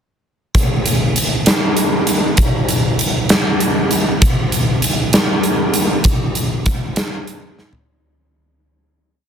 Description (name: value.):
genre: rock.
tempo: 65 BPM (dotted quarters).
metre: 6/8.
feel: straight.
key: none.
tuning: none.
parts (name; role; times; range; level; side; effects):
huge arena drum kit; drums; 0.5-7.9 s; hi-hat, kick drum, snare drum, toms; -13 LUFS; equal; none.
room: moderate small room reverb, RT60 0.5 s.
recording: dense, heavily limited modern master.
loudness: -14 LUFS.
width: side -8 dB against mid.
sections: 0.6-7.9 verse.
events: fade-out 6.1-7.9; drum fill 7.6-7.9.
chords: none.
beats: | 0.55 1.47 | 2.38 3.30 | 4.22 5.14 | 6.05 6.97.